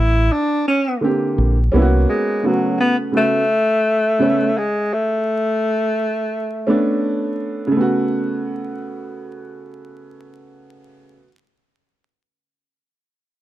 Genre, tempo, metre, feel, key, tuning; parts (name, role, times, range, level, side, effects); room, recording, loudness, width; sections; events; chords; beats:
hip hop; 85 BPM; 4/4; swing 62% on 16ths; A major; A4 = 440 Hz
breathy alto saxophone; melody; 0.0-7.0 s; F#3 to E4; -18 LUFS; left 1 dB
deep dub fingered electric bass; bass; 0.0-2.0 s; A1 to C2; -15 LUFS; equal
dark upright piano; accompaniment; 1.0-11.3 s; C#3 to G4; -18 LUFS; right 1 dB
digital ambience; dry, close 1970s-style studio recording, vinyl crackle; -16 LUFS; side -14 dB against mid
0.0-7.7 A section; 7.7-10.6 B section
0.0 Dmaj7sus2; 1.4 Bb69; 2.1 A69/C#; 4.9 Bm9; 7.7 A69
0.67 1.38 | 2.09 2.79 3.50 4.20 | 4.91 5.62 6.32 7.03 | 7.73 8.44 9.14 9.85